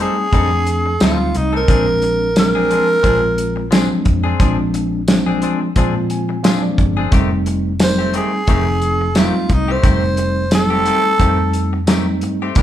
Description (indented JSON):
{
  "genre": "straight-eighth soul blues",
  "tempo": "88 BPM",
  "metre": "4/4",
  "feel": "swing 54% on 16ths",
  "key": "F mixolydian",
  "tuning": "A4 = 440 Hz",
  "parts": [
    { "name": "growling tenor saxophone", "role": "melody", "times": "0.0-3.7, 7.8-11.9 s", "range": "Eb4 to C5", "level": "-17 LUFS", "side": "right 1 dB", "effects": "none" },
    { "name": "mellow tine electric piano", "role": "accompaniment", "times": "0.0-12.6 s", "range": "F3 to Ab5", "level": "-20 LUFS", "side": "equal", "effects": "medium stereo tremolo" },
    { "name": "direct-recorded clean electric guitar", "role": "stabs", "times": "0.0-12.6 s", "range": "Eb3 to A4", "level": "-25 LUFS", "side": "left 6 dB", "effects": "none" },
    { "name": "vintage muted fingered electric bass", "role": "bass", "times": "0.0-12.6 s", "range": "F1 to Bb2", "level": "-22 LUFS", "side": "equal", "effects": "none" },
    { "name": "warm soul drum kit", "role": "drums", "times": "0.3-12.6 s", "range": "hi-hat, kick drum, snare drum, tambourine", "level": "-17 LUFS", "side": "equal", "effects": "none" }
  ],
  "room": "light reverb",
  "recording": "band playing live in one room",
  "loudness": "-13 LUFS",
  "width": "side -11 dB against mid",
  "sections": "0.0-12.6 A section",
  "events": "tine electric piano fill 5.8-7.1",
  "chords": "0.0 F9; 1.7 Bb9; 7.1 F9"
}